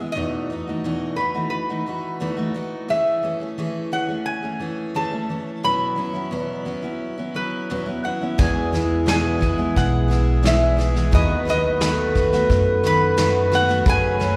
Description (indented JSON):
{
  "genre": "acoustic folk duo or small band",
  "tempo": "87 BPM",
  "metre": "4/4",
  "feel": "straight",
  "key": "E major",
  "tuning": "A4 = 442 Hz",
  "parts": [
    { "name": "lap resonator guitar", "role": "melody", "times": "0.0-14.4 s", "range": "B4 to B5", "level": "-27 LUFS", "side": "equal", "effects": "none" },
    { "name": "picked steel-string acoustic guitar", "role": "accompaniment", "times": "0.0-14.4 s", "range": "E2 to G#4", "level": "-28 LUFS", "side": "equal", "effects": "none" },
    { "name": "mellow accordion", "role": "second line", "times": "8.4-14.4 s", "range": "G#4 to B4", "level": "-27 LUFS", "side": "equal", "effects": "none" },
    { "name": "picked plugged-in twelve-string acoustic guitar", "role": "arpeggios", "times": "8.4-14.4 s", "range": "E3 to G#4", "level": "-28 LUFS", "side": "equal", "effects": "none" },
    { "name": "upright bass", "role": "bass", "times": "8.4-14.4 s", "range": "B1 to F#2", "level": "-24 LUFS", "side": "equal", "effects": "none" },
    { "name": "soft brush drum kit", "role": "drums", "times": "8.4-14.3 s", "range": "kick drum, snare drum", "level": "-26 LUFS", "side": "equal", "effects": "none" }
  ],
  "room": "wet concert hall reverb, RT60 2.1 s",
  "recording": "heard from further back in the room",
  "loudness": "-21 LUFS",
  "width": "mono",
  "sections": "0.0-8.4 A section; 8.4-14.4 B section",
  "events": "none",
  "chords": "0.2 B7/E; 2.9 Amaj7/E; 5.6 F#sus4/E; 8.4 E; 11.1 B7/D#; 13.9 F#madd9"
}